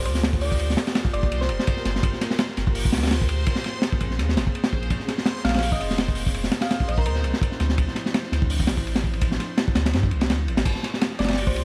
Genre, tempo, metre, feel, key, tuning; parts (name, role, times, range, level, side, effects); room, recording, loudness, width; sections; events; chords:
drum and bass, jungle; 167 BPM; 4/4; swing 55% on 16ths; G minor; A4 = 440 Hz
thumb-piano-like synth pluck; melody; 0.0-1.9, 5.4-7.1, 11.2-11.6 s; Bb4 to F5; -34 LUFS; equal; chorus, dub echo
airy breathy pad; sustained chords; 0.0-11.6 s; F3 to Bb4; -38 LUFS; equal; chorus, vintage 12-bit sampler grit
soft dub sub bass; bass; 0.0-11.6 s; F1 to G2; -28 LUFS; equal
backwards swelling texture; texture; 0.6-10.7 s; C5 to C6; -40 LUFS; equal; built-in reverb
crunchy breakbeat drum kit; drums; 0.1-11.6 s; crash cymbal, hi-hat, kick drum, ride cymbal, snare drum; -25 LUFS; equal
small room ambience; vinyl crackle; -23 LUFS; mono
0.0-10.7 A section
drop 0.0-10.7
0.0 Gm9; 3.5 Bbm9; 7.1 Dm9; 10.7 Gm9